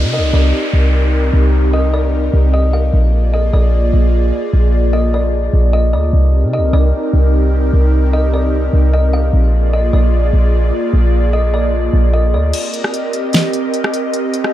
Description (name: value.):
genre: hip hop, atmospheric cloud-rap.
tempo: 150 BPM.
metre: 4/4.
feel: half-time.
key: C minor.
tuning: A4 = 440 Hz.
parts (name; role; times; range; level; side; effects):
airy breathy pad; sustained chords; 0.0-14.5 s; Bb3 to Eb5; -19 LUFS; equal; chorus.
clean 808-style bass; bass; 0.0-12.5 s; Bb1 to C3; -12 LUFS; equal; none.
downlifter; sound effects; 0.0-2.9 s; none; -25 LUFS; equal; none.
kalimba; melody; 0.1-12.5 s; D5 to F5; -22 LUFS; left 1 dB; low-pass filter, digital delay.
smooth R&B drum kit; drums; 12.5-14.5 s; crash cymbal, hi-hat, rim click, snare drum; -18 LUFS; equal; none.
room: digital ambience.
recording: dark, warm production.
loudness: -12 LUFS.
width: side -13 dB against mid.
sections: 0.0-12.5 A section; 12.5-14.5 B section.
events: break 12.5-14.5.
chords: 0.0 Cm7; 2.9 Bb7; 6.1 Cm7; 9.3 Bb7; 12.5 Cm7.